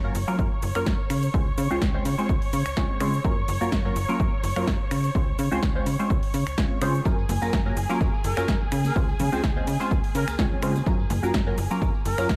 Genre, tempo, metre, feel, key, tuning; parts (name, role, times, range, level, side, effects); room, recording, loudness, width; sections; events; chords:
filtered disco house; 126 BPM; 4/4; swing 54% on 16ths; Db major; A4 = 440 Hz
funky polysynth comp; accompaniment; 0.0-12.3 s; Gb3 to Db5; -31 LUFS; equal; chorus, phaser, sidechain pumping, low-pass filter
clear studio string section; sustained chords; 0.0-12.4 s; Ab4 to Db6; -36 LUFS; equal; sidechain pumping, low-pass filter
slap-like FM bass; bass; 0.0-12.4 s; Gb1 to Db3; -30 LUFS; equal; sidechain pumping, low-pass filter
house drum kit; drums; 0.1-12.4 s; finger snaps, hi-hat, shaker, snare drum; -35 LUFS; equal; studio ambience, sidechain pumping on cymbals, sidechain pumping on perc, sidechain pumping on hats
electronic kick drum; drums; 0.4-12.4 s; -28 LUFS; equal; studio ambience
tambourine and congas; percussion; 7.1-12.4 s; -41 LUFS; equal; sidechain pumping on perc, low-pass filter on perc
clear trumpet section; melody; 8.2-12.4 s; F4 to Bb4; -35 LUFS; equal; sidechain pumping, low-pass filter, delay
light reverb, digital ambience; -24 LUFS; mono
0.0-12.4 A section
0.0 Gbmaj7; 1.1 Dbmaj7; 3.2 Gbmaj7; 4.9 Dbmaj7; 7.1 Gbmaj7; 8.7 Dbmaj7; 10.9 Gbmaj7